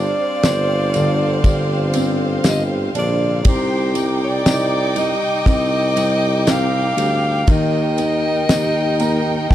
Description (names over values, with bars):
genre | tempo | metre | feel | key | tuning
pop ballad | 60 BPM | 4/4 | straight | C minor | A4 = 440 Hz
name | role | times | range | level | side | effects
breathy alto saxophone | melody | 0.0-9.5 s | C5 to F5 | -21 LUFS | equal | none
warm studio violin section | second line | 0.0-9.5 s | C4 to D6 | -24 LUFS | equal | digital delay
warm concert grand piano | accompaniment | 0.0-9.5 s | C3 to Bb5 | -23 LUFS | equal | none
mellow tuba | bass | 0.0-9.5 s | G1 to Eb2 | -21 LUFS | equal | none
damped 70s drum kit | drums | 0.4-9.5 s | kick drum, ride cymbal, snare drum | -18 LUFS | equal | none
tambourine | percussion | 0.4-9.5 s | none | -33 LUFS | left 10 dB | none
room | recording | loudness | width
small room reverb | dark, warm production | -15 LUFS | side -12 dB against mid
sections
0.0-9.5 A section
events
grand piano fill 8.5-9.5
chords
0.0 Gsus4; 3.5 Cmadd9; 7.5 Eb